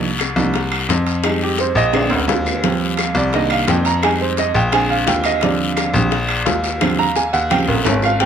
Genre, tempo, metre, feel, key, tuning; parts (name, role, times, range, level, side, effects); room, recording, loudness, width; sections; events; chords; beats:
Afro-Cuban jazz; 172 BPM; 4/4; straight; Eb major; A4 = 440 Hz
warm upright piano; accompaniment; 0.0-8.3 s; Db3 to Bb5; -18 LUFS; right 4 dB
bright grand piano; bass; 0.0-8.3 s; Ab1 to F2; -19 LUFS; left 2 dB
bongos; percussion; 0.2-8.3 s; -24 LUFS; left 10 dB
claves; percussion; 0.2-8.2 s; -27 LUFS; equal
guiro; percussion; 0.2-8.3 s; -28 LUFS; left 7 dB
timbales; percussion; 0.2-8.3 s; -26 LUFS; right 4 dB
light reverb; close, detailed microphones; -15 LUFS; side -8 dB against mid
0.0-8.2 A section
upright piano solo 0.0-8.3; drum fill 1.9-2.6, 7.7-8.2
0.0 Cm11; 1.2 Fm9; 1.9 Bb9; 2.6 Eb69; 3.3 Cm7; 4.0 Fm7; 4.7 Bb9; 5.4 Ebmaj13; 7.5 Eb13
0.20 0.55 0.89 | 1.24 1.59 1.94 2.29 | 2.64 2.98 3.33 3.68 | 4.03 4.38 4.73 5.07 | 5.42 5.77 6.12 6.47 | 6.82 7.16 7.51 7.86 | 8.21